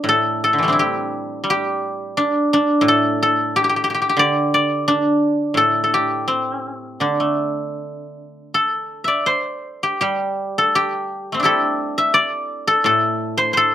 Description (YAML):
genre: chinese traditional, Chinese solo plucked strings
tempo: 75-90 BPM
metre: 4/4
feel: rubato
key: D shang mode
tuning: A4 = 440 Hz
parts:
  - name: guzheng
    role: solo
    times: 0.0-13.7 s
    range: A2 to E5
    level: -16 LUFS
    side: equal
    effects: slapback echo
room: little or no reverb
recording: recorded outdoors, with no room sound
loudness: -16 LUFS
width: side -11 dB against mid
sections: 0.0-8.6 A section; 8.6-13.7 B section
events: none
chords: none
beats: | 0.04 0.75 1.44 2.13 | 2.82 3.49 4.17 4.87 | 5.57 6.29 7.02 7.79 | 8.56 9.29 10.03 10.78 | 11.50 12.18 12.87 13.56